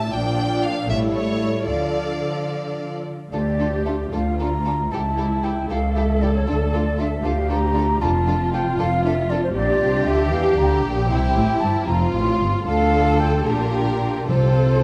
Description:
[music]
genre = quick classical-period movement for symphony orchestra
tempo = 77 BPM (dotted quarters)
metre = 6/8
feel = rubato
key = D minor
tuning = A4 = 439 Hz
[part]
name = rich studio violin section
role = melody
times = 0.0-14.8 s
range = E4 to A5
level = -33 LUFS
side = equal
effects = none
[part]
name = rich studio violin section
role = second line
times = 0.0-14.8 s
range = C4 to F5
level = -31 LUFS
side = equal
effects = none
[part]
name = rich studio viola section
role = accompaniment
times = 0.0-14.8 s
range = D4 to A4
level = -28 LUFS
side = equal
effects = none
[part]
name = rich studio cello section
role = bass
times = 0.0-14.8 s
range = C#2 to E3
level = -28 LUFS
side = equal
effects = none
[part]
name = warm French horn section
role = sustained chords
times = 0.1-3.0 s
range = F3 to E4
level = -30 LUFS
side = equal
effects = none
[part]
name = rich studio double bass section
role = bass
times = 0.1-14.8 s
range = F1 to E2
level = -26 LUFS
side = equal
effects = none
[part]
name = mellow concert flute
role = second line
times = 3.3-14.8 s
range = C5 to C6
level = -27 LUFS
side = equal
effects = none
[part]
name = timpani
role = percussion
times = 8.0-8.7, 14.3-14.8 s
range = F2 to C3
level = -28 LUFS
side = equal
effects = none
[sound]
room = moderate scoring stage reverb, RT60 1.9 s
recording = dark, warm production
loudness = -21 LUFS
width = mono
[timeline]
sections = 0.0-3.3 A section; 3.3-14.8 B section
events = none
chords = 0.1 Bb; 0.9 A7; 1.7 Dm; 4.9 A7/C#; 6.5 Dm; 8.0 Dm/F; 9.6 Gm7/Bb; 11.1 C; 11.9 F; 12.7 Dm; 13.5 Gm7/Bb; 14.3 F/C

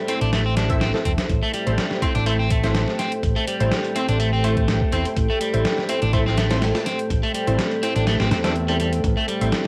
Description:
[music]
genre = breakbeat, breaks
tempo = 124 BPM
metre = 4/4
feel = swing 53% on 16ths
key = A minor pentatonic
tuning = A4 = 439 Hz
[part]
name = deep dark ambient pad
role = sustained chords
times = 0.0-9.7 s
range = A3 to G5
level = -29 LUFS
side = equal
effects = chorus, built-in reverb, sidechain pumping, cassette tape
[part]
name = electric guitar at the edge of break-up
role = riff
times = 0.0-9.7 s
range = G3 to D4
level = -28 LUFS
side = equal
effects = tube saturation, cassette tape, analog delay
[part]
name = orchestra-hit-like synth stab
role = stabs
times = 0.1-9.5 s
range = A3 to E5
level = -31 LUFS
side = equal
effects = built-in reverb, cassette tape, analog delay
[part]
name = dusty soul sampler-style drum kit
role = drums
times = 0.1-9.6 s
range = hi-hat, kick drum, snare drum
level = -26 LUFS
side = equal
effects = small room reverb
[part]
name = electronic hi-hat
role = drums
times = 0.1-9.6 s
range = none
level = -42 LUFS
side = equal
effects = small room reverb
[part]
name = fingered electric bass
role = bass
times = 0.2-9.5 s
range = E1 to E2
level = -25 LUFS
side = equal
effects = none
[sound]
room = moderate digital room reverb, RT60 1.1 s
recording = home recording on cassette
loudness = -21 LUFS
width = mono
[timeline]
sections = 0.0-9.7 A section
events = none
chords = 0.0 Am

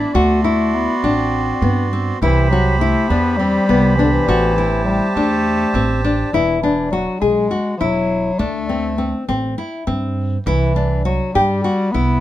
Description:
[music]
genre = contemporary instrumental, chamber music in an uneven meter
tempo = 204 BPM (eighths)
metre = 7/8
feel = straight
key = unclear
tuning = A4 = 439 Hz
[part]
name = warm bass clarinet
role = melody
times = 0.0-12.2 s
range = D3 to D4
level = -19 LUFS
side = left 2 dB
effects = none
[part]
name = hand-pumped harmonium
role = sustained chords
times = 0.0-6.3 s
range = E4 to C6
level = -21 LUFS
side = right 4 dB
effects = none
[part]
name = nylon-string guitar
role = arpeggios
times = 0.0-12.2 s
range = B3 to G#4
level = -20 LUFS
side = left 3 dB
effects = none
[part]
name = upright bass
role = bass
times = 0.0-12.2 s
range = E1 to G2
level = -20 LUFS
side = right 2 dB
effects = none
[sound]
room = light reverb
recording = close, detailed microphones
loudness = -15 LUFS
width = side -13 dB against mid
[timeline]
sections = 0.0-6.3 A section; 6.3-12.2 B section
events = none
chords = 0.0 Cmaj9; 4.3 Am7; 6.3 Eadd9; 8.4 D9sus4; 10.5 C

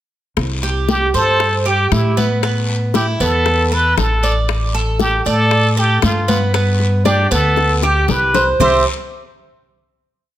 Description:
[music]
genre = latin, Cuban son and guajira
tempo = 117 BPM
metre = 4/4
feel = straight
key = C major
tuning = A4 = 439 Hz
[part]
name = upright bass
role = bass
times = 0.4-8.8 s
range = A1 to A2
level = -17 LUFS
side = equal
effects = none
[part]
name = bongos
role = percussion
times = 0.4-8.7 s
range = none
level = -24 LUFS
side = left 10 dB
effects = none
[part]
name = congas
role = percussion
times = 0.4-8.7 s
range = none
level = -24 LUFS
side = left 2 dB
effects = none
[part]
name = guiro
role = percussion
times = 0.4-8.7 s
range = none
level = -28 LUFS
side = left 5 dB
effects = none
[part]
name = Cuban tres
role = arpeggios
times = 0.6-8.8 s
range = B3 to D5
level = -19 LUFS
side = right 3 dB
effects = none
[part]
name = trumpet with plunger mute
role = melody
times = 0.9-8.8 s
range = E4 to E5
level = -17 LUFS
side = equal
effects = none
[sound]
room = light reverb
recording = close, detailed microphones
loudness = -13 LUFS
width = side -12 dB against mid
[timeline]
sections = 0.4-8.6 verse; 8.6-10.4 final chord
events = drum fill 7.6-8.6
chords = 0.4 C5; 2.4 Asus2; 4.5 D5/A; 6.5 G; 8.6 C5

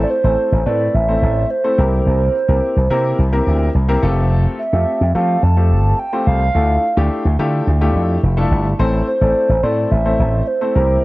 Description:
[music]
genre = dance-pop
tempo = 107 BPM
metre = 4/4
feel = straight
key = A minor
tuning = A4 = 440 Hz
[part]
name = hollow clarinet-like synth lead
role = melody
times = 0.0-11.0 s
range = C5 to A5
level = -19 LUFS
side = right 2 dB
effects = chorus
[part]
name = warm baby grand piano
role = accompaniment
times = 0.0-11.0 s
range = A3 to D5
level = -21 LUFS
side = left 2 dB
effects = none
[part]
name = slap bass with an envelope filter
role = bass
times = 0.0-11.0 s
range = F1 to F3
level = -15 LUFS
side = equal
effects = none
[sound]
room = light reverb, small room ambience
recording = worn, warbling old tape, cassette tape, warbly pitch drift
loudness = -14 LUFS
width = side -19 dB against mid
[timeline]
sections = 0.0-11.0 A section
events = none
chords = 0.0 Am; 1.8 C7; 4.0 Fadd9; 6.5 Dmadd9; 8.8 Am

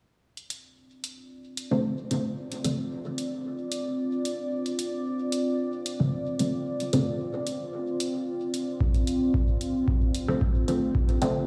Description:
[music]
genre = dub techno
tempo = 112 BPM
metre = 4/4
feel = straight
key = D minor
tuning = A4 = 439 Hz
[part]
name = deep dark ambient pad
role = sustained chords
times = 1.6-11.5 s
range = C4 to D5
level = -32 LUFS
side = equal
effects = chorus, built-in reverb, sidechain pumping
[part]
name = electronic hi-hat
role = drums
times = 0.4-11.3 s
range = none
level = -39 LUFS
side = equal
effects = overdrive
[part]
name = filtered dub chord stab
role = stabs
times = 1.7-11.4 s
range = D3 to C4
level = -31 LUFS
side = equal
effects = phaser, sidechain pumping, dub echo
[part]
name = electronic kick drum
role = drums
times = 8.8-11.1 s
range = none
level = -28 LUFS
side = equal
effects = none
[sound]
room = moderate huge ambient reverb, RT60 6.8 s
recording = played on a big sound system in a bare room, large studio reverb, studio ambience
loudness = -28 LUFS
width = mono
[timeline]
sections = 0.2-11.5 A section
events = none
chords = 0.2 Dm7

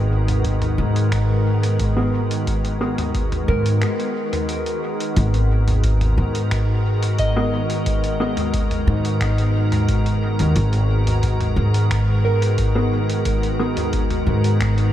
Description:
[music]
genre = ambient dub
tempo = 89 BPM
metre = 4/4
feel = straight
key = G# minor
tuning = A4 = 440 Hz
[part]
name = soft additive organ-like pad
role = sustained chords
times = 0.0-14.9 s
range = D#3 to A#4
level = -24 LUFS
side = equal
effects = ensemble chorus, built-in reverb
[part]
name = soft synth bell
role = arpeggios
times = 0.0-14.9 s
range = A#4 to D#5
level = -30 LUFS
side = right 1 dB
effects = chorus, phaser, dub echo
[part]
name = upright bass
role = bass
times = 0.0-14.9 s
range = G#1 to G#2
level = -19 LUFS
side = equal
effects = none
[part]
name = lo-fi sampler-style drum kit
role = drums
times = 0.3-14.9 s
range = finger snaps, hi-hat, toms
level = -30 LUFS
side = equal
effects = dub echo
[part]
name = electronic kick drum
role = drums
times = 0.5-14.7 s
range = none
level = -26 LUFS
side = equal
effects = overdrive
[part]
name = mellow electric guitar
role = stabs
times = 2.0-2.9, 7.4-8.3, 12.8-13.7 s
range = B3 to A#4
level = -29 LUFS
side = equal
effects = dub echo
[sound]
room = light reverb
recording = none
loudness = -17 LUFS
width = side -12 dB against mid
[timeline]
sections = 0.0-5.2 A section; 5.2-14.9 B section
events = break 3.8-5.2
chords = 0.0 G#m9

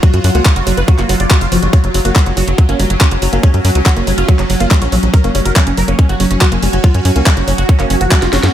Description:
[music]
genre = psychedelic trance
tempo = 141 BPM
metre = 4/4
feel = straight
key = F# major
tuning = A4 = 439 Hz
[part]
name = supersaw stab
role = melody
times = 0.0-8.5 s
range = F#3 to E#5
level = -20 LUFS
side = right 1 dB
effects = phaser, sidechain pumping, digital delay
[part]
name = evolving wavetable pad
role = sustained chords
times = 0.0-8.5 s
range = F#3 to F#4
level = -21 LUFS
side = equal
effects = phaser, built-in reverb, sidechain pumping
[part]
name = woody wave-folded pluck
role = riff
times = 0.0-8.5 s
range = E#3 to F#4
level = -20 LUFS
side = moving between left 5 dB and right 6 dB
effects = chorus, auto-pan, cassette tape, sidechain pumping, dub echo
[part]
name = electronic kick drum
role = drums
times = 0.0-8.2 s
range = none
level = -9 LUFS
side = equal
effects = overdrive, studio reverb
[part]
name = garage drum kit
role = drums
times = 0.0-8.5 s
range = handclaps, hi-hat, snare drum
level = -18 LUFS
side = equal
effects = overdrive, studio reverb
[part]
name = tight sequencer bass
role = bass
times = 0.1-8.5 s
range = F#1 to F#2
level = -15 LUFS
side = equal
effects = none
[part]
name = swell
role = sound effects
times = 7.9-8.5 s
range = none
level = -21 LUFS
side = right 3 dB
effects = none
[sound]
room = little or no reverb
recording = none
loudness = -10 LUFS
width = side -11 dB against mid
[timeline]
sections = 0.0-8.5 A section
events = swell 7.9-8.5; drum fill 8.2-8.5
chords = 0.0 F#5

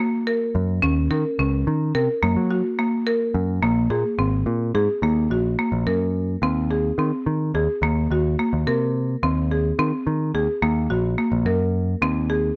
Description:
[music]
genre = contemporary instrumental, chamber music in an uneven meter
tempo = 214 BPM (eighths)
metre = 5/8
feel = straight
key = Eb dorian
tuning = A4 = 437 Hz
[part]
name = buzzing marimba with hard mallets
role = arpeggios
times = 0.0-12.5 s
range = Bb3 to Bb4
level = -25 LUFS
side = equal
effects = none
[part]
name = picked electric bass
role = bass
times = 0.5-12.5 s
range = Ab1 to Gb3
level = -24 LUFS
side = equal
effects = none
[sound]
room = light reverb, studio reverb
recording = none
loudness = -22 LUFS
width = mono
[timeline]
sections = 0.0-5.0 A section; 5.0-12.6 B section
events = none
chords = 0.0 Gb; 0.8 Eb5; 2.2 Gb; 3.6 Abadd9; 5.0 Ebm; 6.4 Ab/Eb; 7.8 Ebm6; 9.2 Ab/Eb; 10.6 Ebm; 12.0 Ab/Eb

